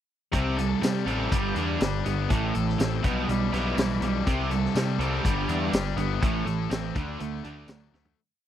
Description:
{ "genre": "indie rock", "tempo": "122 BPM", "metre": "4/4", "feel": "straight", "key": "unclear", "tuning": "A4 = 440 Hz", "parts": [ { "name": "biting overdriven guitar", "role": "riff", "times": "0.3-8.2 s", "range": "G2 to D4", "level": "-28 LUFS", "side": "right 6 dB", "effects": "analog chorus, slapback echo" }, { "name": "distorted electric guitar", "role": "riff", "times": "0.3-8.2 s", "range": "A2 to A4", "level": "-30 LUFS", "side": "left 11 dB", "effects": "overdrive" }, { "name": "fuzz picked electric bass", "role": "bass", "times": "0.3-8.1 s", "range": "G1 to C3", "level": "-30 LUFS", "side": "equal", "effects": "overdrive" }, { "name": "vintage drum kit", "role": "drums", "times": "0.3-8.2 s", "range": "hi-hat, kick drum, snare drum, tambourine, toms", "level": "-28 LUFS", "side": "equal", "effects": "none" } ], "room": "little or no reverb", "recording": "dry, close 1970s-style studio recording", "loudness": "-24 LUFS", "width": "side -10 dB against mid", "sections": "0.3-8.2 pre-chorus", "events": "fade-out 6.2-8.2; drum fill 7.9", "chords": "0.3 C5; 1.3 G; 2.3 Am; 3.0 Em/B; 4.3 C5; 5.2 G; 6.2 Am; 7.0 D", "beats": "| 0.33 0.82 1.32 1.81 | 2.30 2.79 3.29 3.78 | 4.27 4.76 5.25 5.74 | 6.23 6.71 7.21 7.70" }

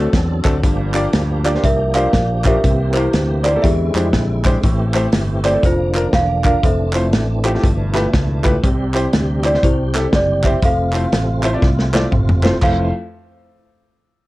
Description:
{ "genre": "uptempo gospel", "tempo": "120 BPM", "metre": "4/4", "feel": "swing 62% on 8ths", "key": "F major", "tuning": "A4 = 440 Hz", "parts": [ { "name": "worn celesta", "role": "melody", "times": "0.0-12.9 s", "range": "E4 to F5", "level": "-20 LUFS", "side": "right 1 dB", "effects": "cassette tape" }, { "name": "clear grand piano", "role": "accompaniment", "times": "0.0-12.9 s", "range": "F2 to D5", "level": "-21 LUFS", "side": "left 1 dB", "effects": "plate reverb" }, { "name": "tonewheel organ", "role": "sustained chords", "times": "0.0-12.9 s", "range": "B2 to A4", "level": "-24 LUFS", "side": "right 2 dB", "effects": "slow rotary speaker, overdrive, chorus vibrato" }, { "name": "fingered electric bass", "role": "bass", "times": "0.0-12.9 s", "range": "E1 to F2", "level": "-19 LUFS", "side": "equal", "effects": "none" }, { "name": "warm soul drum kit", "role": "drums", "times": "0.1-12.8 s", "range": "crash cymbal, hi-hat, kick drum, snare drum, toms", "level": "-17 LUFS", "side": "equal", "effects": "cassette tape" }, { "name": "group handclap", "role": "percussion", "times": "0.4-12.9 s", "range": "none", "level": "-26 LUFS", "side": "right 3 dB", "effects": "none" } ], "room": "light reverb", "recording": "home recording on cassette", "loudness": "-14 LUFS", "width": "side -18 dB against mid", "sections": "0.0-12.6 A section; 12.6-14.3 B section", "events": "drum fill 11.6-12.6", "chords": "0.0 D7; 0.6 Gm7; 2.6 C7; 3.6 E7alt; 4.6 Am7; 5.6 Bb/F; 6.6 Fmaj7; 7.6 G13; 8.6 C; 10.6 Fmaj7", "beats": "0.14 | 0.64 1.14 1.64 2.14 | 2.64 3.14 3.64 4.14 | 4.64 5.13 5.63 6.13 | 6.63 7.13 7.63 8.13 | 8.63 9.13 9.63 10.13 | 10.63 11.12 11.62 12.12 | 12.62" }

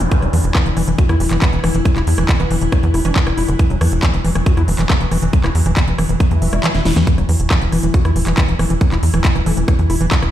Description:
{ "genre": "psychedelic trance", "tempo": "138 BPM", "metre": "4/4", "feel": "straight", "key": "unclear", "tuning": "A4 = 440 Hz", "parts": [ { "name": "evolving wavetable pad", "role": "sustained chords", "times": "0.0-10.3 s", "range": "E3 to E4", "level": "-23 LUFS", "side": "left 1 dB", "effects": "chorus, built-in reverb, sidechain pumping" }, { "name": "overdriven acid bass", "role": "riff", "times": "0.0-10.1 s", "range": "D3 to F#4", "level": "-21 LUFS", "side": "moving between left 4 dB and right 3 dB", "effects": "auto-pan, sidechain pumping, tape echo" }, { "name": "tight sequencer bass", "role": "bass", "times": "0.0-10.3 s", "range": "E1 to E2", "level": "-17 LUFS", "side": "equal", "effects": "tube saturation" }, { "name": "big-room dance drum kit", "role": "drums", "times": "0.0-10.3 s", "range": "handclaps, hi-hat, rim click, snare drum", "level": "-22 LUFS", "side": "left 1 dB", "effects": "none" }, { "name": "electronic kick drum", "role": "drums", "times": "0.1-10.2 s", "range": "none", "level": "-14 LUFS", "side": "equal", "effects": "none" }, { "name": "resonant blip pluck", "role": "second line", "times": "1.4-3.5, 8.4-10.1 s", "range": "A3 to D4", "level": "-31 LUFS", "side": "right 3 dB", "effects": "analog chorus, sidechain pumping, high-pass filter, ping-pong delay" }, { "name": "swell", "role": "sound effects", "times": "6.3-7.1 s", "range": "none", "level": "-27 LUFS", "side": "left 1 dB", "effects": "none" } ], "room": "digital ambience", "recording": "played on a big sound system in a bare room, large studio reverb", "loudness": "-13 LUFS", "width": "side -12 dB against mid", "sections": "0.0-10.3 A section", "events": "swell 6.3-7.1; kick drops out 6.6-7.1; drum fill 6.7-7.1", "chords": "0.0 Esus2", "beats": "| 0.12 0.55 0.98 1.42 | 1.85 2.29 2.72 3.16 | 3.59 4.03 4.46 4.90 | 5.33 5.77 6.20 6.64 | 7.07 7.51 7.94 8.38 | 8.81 9.25 9.68 10.12" }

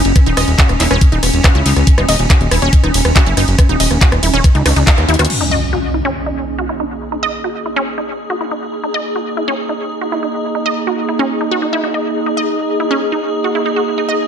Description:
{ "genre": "psychedelic trance", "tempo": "140 BPM", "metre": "4/4", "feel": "straight", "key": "Eb phrygian", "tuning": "A4 = 440 Hz", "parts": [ { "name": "swarming drone", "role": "sustained chords", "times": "0.0-14.3 s", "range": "Db4 to Ab4", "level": "-21 LUFS", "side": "equal", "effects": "built-in reverb, sidechain pumping" }, { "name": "wide unison pluck", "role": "riff", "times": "0.0-14.1 s", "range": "Db4 to Eb5", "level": "-19 LUFS", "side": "moving between left 4 dB and right 5 dB", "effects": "auto-pan, sidechain pumping, dub echo" }, { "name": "fat analog bass", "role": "bass", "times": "0.1-5.3 s", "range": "Eb1 to Eb2", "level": "-14 LUFS", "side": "equal", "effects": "tube saturation" }, { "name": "drum and bass drum kit", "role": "drums", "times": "0.1-5.4 s", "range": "crash cymbal, handclaps, hi-hat, ride cymbal, rim click", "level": "-17 LUFS", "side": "equal", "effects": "none" }, { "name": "electronic kick drum", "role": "drums", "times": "0.2-5.0 s", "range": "none", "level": "-9 LUFS", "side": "equal", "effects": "none" }, { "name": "impact", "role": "sound effects", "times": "5.3-7.0 s", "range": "none", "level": "-22 LUFS", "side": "equal", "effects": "none" }, { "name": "warbly tape-like pad", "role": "texture", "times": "6.2-14.3 s", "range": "Bb3 to Bb5", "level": "-22 LUFS", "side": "right 4 dB", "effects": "chorus, built-in reverb, sidechain pumping" } ], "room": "light reverb", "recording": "none", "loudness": "-12 LUFS", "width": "side -8 dB against mid", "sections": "0.0-5.3 A section; 5.3-14.3 B section", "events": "drop 0.0-5.3; band accent 4.9; drum fill 5.1; impact 5.3-7.0", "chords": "0.0 Ebm7; 5.3 Eb5", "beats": "| 0.16 0.59 1.01 1.44 | 1.87 2.30 2.73 3.16 | 3.59 4.01 4.44 4.87 | 5.30 5.73 6.16 6.59 | 7.01 7.44 7.87 8.30 | 8.73 9.16 9.59 10.01 | 10.44 10.87 11.30 11.73 | 12.16 12.59 13.01 13.44 | 13.87" }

